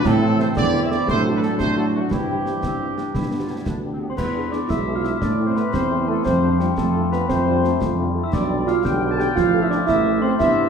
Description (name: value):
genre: military-style march for wind band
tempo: 116 BPM (dotted quarters)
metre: 6/8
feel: straight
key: unclear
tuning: A4 = 440 Hz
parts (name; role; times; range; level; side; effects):
- mellow trumpet section; melody; 0.0-10.7 s; F#4 to A5; -29 LUFS; right 1 dB; none
- mellow euphonium; second line; 0.0-10.7 s; F#2 to A4; -24 LUFS; right 3 dB; none
- warm woodwind section; second line; 0.0-10.7 s; B3 to A5; -29 LUFS; left 1 dB; none
- mellow tuba; bass; 0.0-10.7 s; A1 to A2; -23 LUFS; right 2 dB; none
- mellow trombone section; sustained chords; 0.1-10.7 s; D3 to D4; -26 LUFS; right 1 dB; none
- concert snare drum, clash cymbals and concert bass drum; drums; 0.1-10.6 s; none; -28 LUFS; equal; none
- mellow French horn section; accompaniment; 0.2-10.6 s; G3 to A4; -32 LUFS; left 3 dB; none
- glockenspiel with rubber mallets; second line; 4.1-10.7 s; G5 to A6; -26 LUFS; left 5 dB; none
room: wet large studio reverb, RT60 1.5 s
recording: heard from further back in the room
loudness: -18 LUFS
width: side -6 dB against mid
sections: 0.0-4.2 A section; 4.2-10.7 A section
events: none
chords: 0.1 Am; 1.1 D/A; 2.1 C/G; 3.2 G; 4.2 E7; 5.2 Am; 6.3 Dm7/F; 8.3 G/B; 9.4 F/A